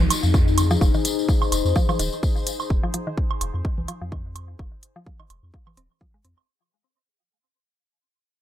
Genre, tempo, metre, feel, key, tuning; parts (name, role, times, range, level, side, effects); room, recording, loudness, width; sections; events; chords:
minimal techno; 127 BPM; 4/4; swing 56% on 16ths; F minor; A4 = 440 Hz
round analog bass; bass; 0.0-6.3 s; Eb1 to F2; -24 LUFS; equal; sidechain pumping
congas and woodblock; percussion; 0.0-6.5 s; -28 LUFS; right 6 dB; digital delay
tambourine; percussion; 0.0-2.7 s; -32 LUFS; left 5 dB
downlifter; sound effects; 0.0-2.7 s; -34 LUFS; right 5 dB
warbly tape-like pad; texture; 0.0-6.5 s; Eb4 to C5; -28 LUFS; left 8 dB; chorus, built-in reverb, phaser, sidechain pumping
electronic hi-hat; drums; 0.1-6.3 s; -25 LUFS; right 1 dB
electronic kick drum; drums; 0.3-6.1 s; -22 LUFS; equal
mallet-like synth pluck; riff; 0.7-6.3 s; Eb3 to C4; -30 LUFS; left 1 dB; chorus, sidechain pumping, ping-pong delay
light reverb; -19 LUFS; side -12 dB against mid
0.0-6.5 A section
fade-out on ambient pad 0.0-6.5; fade-out 0.0-6.5
0.0 Fm